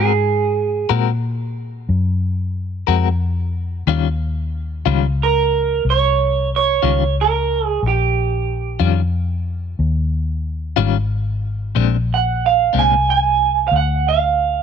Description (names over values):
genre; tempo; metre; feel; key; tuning
slow blues; 61 BPM (dotted quarters); 12/8; straight; unclear; A4 = 440 Hz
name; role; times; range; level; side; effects
electric guitar through a small old amp; melody; 0.0-14.6 s; G4 to Ab5; -16 LUFS; right 9 dB; wide subtle chorus
clean electric guitar; accompaniment; 0.0-12.9 s; Bb2 to Bb4; -19 LUFS; left 20 dB; tremolo
vintage muted fingered electric bass; bass; 0.0-14.6 s; Ab1 to Bb2; -19 LUFS; left 2 dB; none
room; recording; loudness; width
digital ambience; 1960s-style stereo with parts hard left and right; -16 LUFS; side -7 dB against mid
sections
0.0-14.6 A section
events
none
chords
0.0 Ab9; 3.9 Eb9; 11.8 Bb9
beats
0.91 1.90 2.89 | 3.88 4.86 5.85 6.83 | 7.82 8.80 9.79 10.77 | 11.76 12.74 13.72